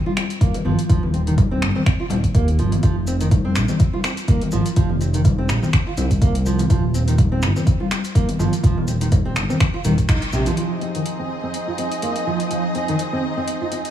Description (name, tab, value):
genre	afro house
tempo	124 BPM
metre	4/4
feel	swing 55% on 16ths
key	F minor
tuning	A4 = 441 Hz
part	nylon-string guitar	arpeggios	0.1-13.8 s	C3 to F4	-24 LUFS	right 2 dB	sidechain pumping, low-pass filter, tape echo
part	congas	percussion	0.1-10.6 s	none	-25 LUFS	left 3 dB	none
part	deep house drum kit	drums	0.2-13.9 s	finger snaps, hi-hat	-28 LUFS	equal	overdrive
part	electronic kick drum	drums	0.4-10.2 s	none	-18 LUFS	equal	overdrive
part	smooth synth bass	bass	0.7-10.5 s	Eb1 to Eb2	-21 LUFS	equal	sidechain pumping
part	maracas	percussion	2.8-10.5 s	none	-37 LUFS	left 1 dB	none
part	rich studio string section	sustained chords	10.6-13.9 s	F3 to Eb5	-25 LUFS	equal	sidechain pumping
room	light reverb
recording	small room ambience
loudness	-17 LUFS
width	side -11 dB against mid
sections	0.0-10.6 A section; 10.6-13.9 B section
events	band accent 10.1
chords	0.0 Eb; 2.8 F5; 6.7 Eb; 10.6 Fm7